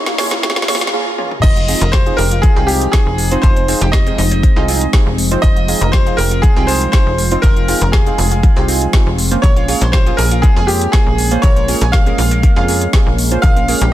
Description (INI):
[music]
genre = progressive house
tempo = 120 BPM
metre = 4/4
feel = straight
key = F minor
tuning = A4 = 442 Hz
[part]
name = filtered supersaw swell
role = sustained chords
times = 0.0-13.9 s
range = Bb2 to F4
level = -24 LUFS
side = equal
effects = sidechain pumping
[part]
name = deep mellow chord stab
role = stabs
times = 0.0-13.8 s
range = Bb3 to C5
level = -21 LUFS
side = right 4 dB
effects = chorus, vintage 12-bit sampler grit, sidechain pumping, digital delay
[part]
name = riser and swell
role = sound effects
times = 0.0-1.4 s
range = none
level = -25 LUFS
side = equal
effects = none
[part]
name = twinkling granular texture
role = texture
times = 0.0-0.9 s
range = Bb4 to Bb5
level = -37 LUFS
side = left 1 dB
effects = none
[part]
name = analog pluck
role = arpeggios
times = 0.1-13.9 s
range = Bb3 to Db5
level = -25 LUFS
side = equal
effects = chorus, sidechain pumping, digital delay
[part]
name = deep house drum kit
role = drums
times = 0.1-13.9 s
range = crash cymbal, hi-hat, snare drum, toms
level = -20 LUFS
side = equal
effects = sidechain pumping on hats, sidechain pumping on toms, sidechain pumping on cymbals
[part]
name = electronic kick drum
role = drums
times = 0.4-13.5 s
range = none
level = -12 LUFS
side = equal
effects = high-pass filter on kick
[part]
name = bright grand piano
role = melody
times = 1.4-13.9 s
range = G4 to F5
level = -20 LUFS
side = equal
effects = ping-pong delay
[part]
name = soft synth bell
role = second line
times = 1.4-13.9 s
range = G4 to F5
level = -30 LUFS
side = right 2 dB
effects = none
[part]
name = tight sequencer bass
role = bass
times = 1.4-13.9 s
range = F1 to F2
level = -17 LUFS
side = equal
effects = sidechain pumping
[sound]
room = little or no reverb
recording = dense, heavily limited modern master, high-pass filter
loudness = -11 LUFS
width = side -13 dB against mid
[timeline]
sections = 0.0-1.4 A section; 1.4-13.9 B section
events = build-up 0.0-1.4; drum fill 0.0-0.9, 1.2; riser 0.0-0.9; filter sweep on synth pluck 0.0-1.4; filter sweep 0.0-1.4; swell 0.4-1.4; break 0.9-1.4; drop 1.4-13.9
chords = 0.0 Bbm7; 1.4 Fm7; 9.4 Bbm7